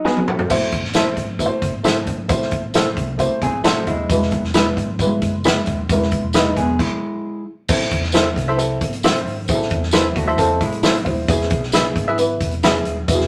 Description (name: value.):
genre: uptempo 1960s-style soul.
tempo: 134 BPM.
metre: 4/4.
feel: straight.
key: unclear.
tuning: A4 = 440 Hz.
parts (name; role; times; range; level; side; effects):
dark upright piano; accompaniment; 0.0-13.3 s; F#3 to A5; -24 LUFS; equal; none.
vintage hollow-body jazz guitar; riff; 0.0-0.7, 3.4-7.4, 10.2-11.3 s; G#3 to B4; -24 LUFS; equal; none.
direct-recorded clean electric guitar; stabs; 0.1-12.8 s; D#4 to E5; -22 LUFS; equal; none.
swinging big-band drum kit; drums; 0.1-13.3 s; crash cymbal, hi-hat, kick drum, snare drum, toms; -23 LUFS; equal; none.
vintage muted fingered electric bass; bass; 0.5-13.3 s; D#1 to A2; -29 LUFS; equal; none.
tambourine; percussion; 0.5-13.2 s; none; -32 LUFS; equal; none.
room: moderate studio reverb, RT60 0.6 s.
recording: none.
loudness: -19 LUFS.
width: mono.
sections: 0.5-7.7 A section; 7.7-13.3 B section.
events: break 0.0-0.5; drum fill 0.0-0.5; upright piano fill 3.2-4.1; stop 6.8-7.7.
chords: 0.5 Am; 4.1 E; 7.7 Am; 11.3 E.